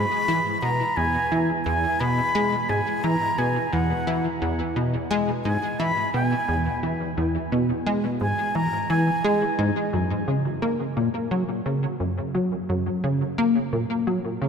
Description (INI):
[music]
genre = ambient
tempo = 87 BPM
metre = 4/4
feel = straight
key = E lydian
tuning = A4 = 440 Hz
[part]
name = breathy concert flute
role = melody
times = 0.0-9.6 s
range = F#5 to B5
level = -26 LUFS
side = equal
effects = tape echo
[part]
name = plucky analog bass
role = riff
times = 0.0-14.5 s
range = E2 to A#3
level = -23 LUFS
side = equal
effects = analog chorus, tape echo
[sound]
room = wet cathedral reverb, RT60 5.5 s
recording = in a vast, echoing space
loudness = -21 LUFS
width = side -6 dB against mid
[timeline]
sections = 0.0-9.9 A section; 9.9-14.5 B section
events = none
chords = 0.0 E; 9.9 F#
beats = 0.28 0.97 | 1.66 2.35 3.04 3.73 | 4.42 5.11 5.80 6.49 | 7.18 7.87 8.55 9.24 | 9.93 10.62 11.31 12.00 | 12.69 13.38 14.07